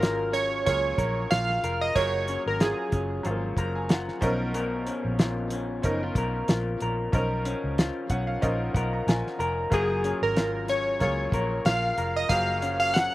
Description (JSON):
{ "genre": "indie pop, bedroom pop", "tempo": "93 BPM", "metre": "4/4", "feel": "swing 55% on 16ths", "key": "F# major", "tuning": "A4 = 439 Hz", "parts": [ { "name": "warm analog keys", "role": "melody", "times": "0.0-3.2, 9.7-13.1 s", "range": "G#4 to F#5", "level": "-26 LUFS", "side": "right 1 dB", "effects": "chorus" }, { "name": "bright upright piano", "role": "accompaniment", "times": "0.0-13.1 s", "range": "E#3 to A#5", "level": "-33 LUFS", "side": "right 1 dB", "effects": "none" }, { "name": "electric guitar through a small old amp", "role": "accompaniment", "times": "0.0-13.1 s", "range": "B2 to A#4", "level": "-31 LUFS", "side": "left 2 dB", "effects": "vibrato effect, slapback echo" }, { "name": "vintage muted fingered electric bass", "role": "bass", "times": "0.0-13.1 s", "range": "E#1 to C#2", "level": "-31 LUFS", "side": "equal", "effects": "none" }, { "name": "cloth-damped thuddy drum kit", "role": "drums", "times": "0.0-13.1 s", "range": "hi-hat, kick drum, snare drum", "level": "-25 LUFS", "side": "equal", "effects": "none" } ], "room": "little or no reverb", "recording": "recorded outdoors, with no room sound", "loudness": "-24 LUFS", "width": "side -16 dB against mid", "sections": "0.0-13.1 A section", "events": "upright piano fill 3.3-4.5, 7.8-9.7", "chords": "0.0 F#maj9; 4.2 Bmaj9#11; 9.7 F#maj9" }